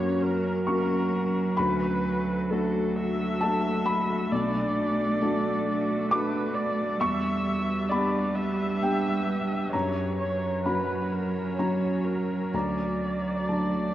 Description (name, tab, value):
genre	neoclassical piano and strings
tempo	66 BPM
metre	3/4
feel	rubato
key	B minor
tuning	A4 = 441 Hz
part	muted cello	second line	0.0-13.9 s	F#3 to A3	-29 LUFS	right 3 dB	none
part	felt-muted upright piano	accompaniment	0.0-13.9 s	B1 to D6	-28 LUFS	left 2 dB	none
part	muted viola	accompaniment	0.0-13.9 s	A4 to E5	-31 LUFS	equal	none
part	evolving wavetable pad	sustained chords	0.0-13.9 s	A3 to A#5	-35 LUFS	equal	chorus, built-in reverb
room	wet concert hall reverb, RT60 2.5 s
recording	worn, warbling old tape, cassette tape, warbly pitch drift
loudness	-24 LUFS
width	side -13 dB against mid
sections	0.0-13.9 A section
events	none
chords	0.0 F#; 1.6 D; 4.3 Bm7; 7.0 Em7; 9.7 F#; 12.5 D